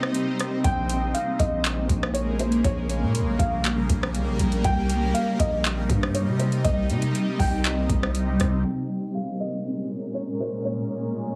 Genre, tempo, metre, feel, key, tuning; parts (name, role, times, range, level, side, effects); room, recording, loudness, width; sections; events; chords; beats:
hip hop, atmospheric cloud-rap; 120 BPM; 4/4; half-time; Bb dorian; A4 = 437 Hz
shimmering ambient pad; sustained chords; 0.0-11.4 s; Bb2 to Db5; -29 LUFS; equal; chorus, built-in reverb, phaser, sidechain pumping, low-pass filter
booming analog drum machine; drums; 0.0-8.5 s; handclaps, hi-hat, kick drum, rim click; -29 LUFS; equal; overdrive
felt-muted upright piano; melody; 0.6-11.4 s; C5 to G5; -32 LUFS; equal; low-pass filter, digital delay
long sustained 808-style bass; bass; 0.6-8.6 s; Bb1 to C3; -28 LUFS; equal
light reverb; heavily compressed radio sound, small room ambience; -25 LUFS; mono
0.0-8.6 A section; 8.6-11.4 B section
break 0.0-0.6; filter sweep 8.6-11.4
0.0 Cm; 0.6 Bbm7; 4.6 Cm7; 8.6 Bbm7
0.15 | 0.65 1.15 1.65 2.15 | 2.65 3.15 3.65 4.15 | 4.65 5.15 5.65 6.15 | 6.65 7.15 7.65 8.15 | 8.65 9.15 9.65 10.15 | 10.65 11.15